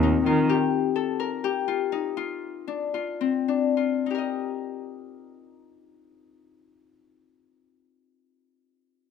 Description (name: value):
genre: contemporary instrumental, chamber music in an uneven meter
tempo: 203-260 BPM (eighths)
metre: 7/8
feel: straight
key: Eb major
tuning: A4 = 440 Hz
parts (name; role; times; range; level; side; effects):
- Celtic harp; arpeggios; 0.0-7.3 s; C4 to Eb5; -24 LUFS; left 9 dB; none
- muted cello; bass; 0.0-0.5 s; Eb2 to Eb3; -24 LUFS; right 4 dB; none
room: light reverb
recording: close, detailed microphones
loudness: -23 LUFS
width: side -6 dB against mid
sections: 0.0-4.1 A section; 4.1-8.1 B section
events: slowing down 0.5-4.1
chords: 0.5 Eb; 2.2 Csus24; 4.1 Eb